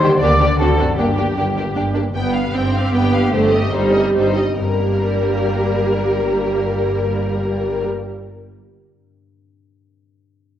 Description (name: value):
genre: classical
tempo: 131-163 BPM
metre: 3/4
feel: rubato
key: G minor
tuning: A4 = 440 Hz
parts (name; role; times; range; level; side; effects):
- warm symphonic violin section; melody; 0.0-7.8 s; F#4 to G5; -26 LUFS; left 3 dB; none
- mellow silver concert flute; second line; 0.0-1.9 s; G5 to D6; -22 LUFS; left 1 dB; none
- rich symphonic violin section; second line; 0.0-7.8 s; Bb3 to D5; -24 LUFS; left 3 dB; none
- warm symphonic viola section; accompaniment; 0.0-7.8 s; G3 to G4; -19 LUFS; right 2 dB; none
- concert harp; arpeggios; 0.0-8.5 s; G2 to C5; -26 LUFS; left 5 dB; none
- clear symphonic double bass section; bass; 0.0-7.8 s; G1 to Eb2; -25 LUFS; right 2 dB; none
- warm studio cello section; bass; 0.0-7.8 s; G2 to Eb3; -23 LUFS; right 2 dB; none
- warm French horn section; sustained chords; 0.2-1.1 s; Bb3 to G4; -24 LUFS; left 2 dB; none
room: wet recital hall reverb, RT60 1.6 s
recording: worn, warbling old tape, cassette tape, warbly pitch drift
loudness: -15 LUFS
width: side -10 dB against mid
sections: 0.0-2.1 A section; 2.1-4.6 B section; 4.6-7.1 C section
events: slowing down 1.6-4.6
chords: 0.2 Gm/D; 0.6 D7; 1.0 Gm; 2.1 G7; 3.3 Cm/G; 4.6 Gm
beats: 0.22 0.60 | 0.98 1.37 1.75 | 2.14 2.54 2.94 | 3.33 3.72 4.15 | 4.59 5.00 5.42 | 5.83 6.25 6.67